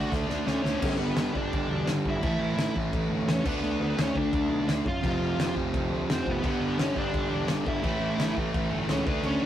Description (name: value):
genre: punk rock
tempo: 171 BPM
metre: 4/4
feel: straight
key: unclear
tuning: A4 = 438 Hz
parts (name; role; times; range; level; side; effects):
- high-gain lead guitar; melody; 0.0-9.5 s; B3 to F5; -31 LUFS; left 1 dB; distortion
- biting overdriven guitar; riff; 0.0-9.5 s; F2 to D4; -31 LUFS; right 4 dB; none
- distorted electric guitar; riff; 0.0-9.5 s; F2 to D4; -34 LUFS; left 5 dB; overdrive
- heavy high-gain guitar; riff; 0.0-0.8, 6.4-9.5 s; G2 to D4; -38 LUFS; equal; distortion
- fuzz picked electric bass; bass; 0.1-9.5 s; E1 to F#2; -33 LUFS; left 1 dB; overdrive
- loose indie drum kit; drums; 0.1-9.3 s; crash cymbal, kick drum, snare drum; -31 LUFS; equal; none
room: light reverb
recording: rough rehearsal-room recording, warm saturation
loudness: -25 LUFS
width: side -11 dB against mid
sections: 0.8-9.5 A section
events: drum fill 0.1-0.8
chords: 0.0 D; 0.8 G; 2.2 A; 3.5 D5; 5.0 F5; 6.4 G; 7.8 A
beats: 0.12 0.47 | 0.82 1.17 1.52 1.88 | 2.23 2.58 2.93 3.28 | 3.63 3.98 4.33 4.68 | 5.03 5.38 5.73 6.08 | 6.43 6.79 7.14 7.49 | 7.84 8.19 8.54 8.89 | 9.24